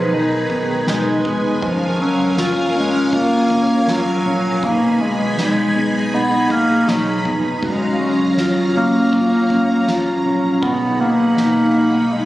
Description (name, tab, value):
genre	dream pop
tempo	80 BPM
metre	4/4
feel	straight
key	B lydian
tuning	A4 = 440 Hz
part	warm bass clarinet	melody	0.0-12.3 s	D#3 to B3	-18 LUFS	equal	digital delay, shimmer reverb
part	string machine, full ensemble	sustained chords	0.0-12.3 s	F#3 to B5	-22 LUFS	right 1 dB	phaser, ensemble chorus, shimmer reverb
part	mellow electric guitar	arpeggios	0.0-12.3 s	B2 to E#4	-20 LUFS	left 1 dB	lush chorus, digital delay, shimmer reverb
part	vintage muted fingered electric bass	bass	0.0-12.3 s	E#1 to B1	-32 LUFS	equal	none
part	soft-mallet drum kit	drums	0.5-12.1 s	kick drum, snare drum, toms	-29 LUFS	equal	none
room	moderate plate reverb, RT60 2.7 s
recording	recorded on a phone in the room, club reverb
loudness	-14 LUFS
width	side -16 dB against mid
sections	0.0-12.3 A section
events	none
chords	0.0 B6; 1.6 F#maj7; 4.6 B6; 7.6 F#maj7; 10.6 B6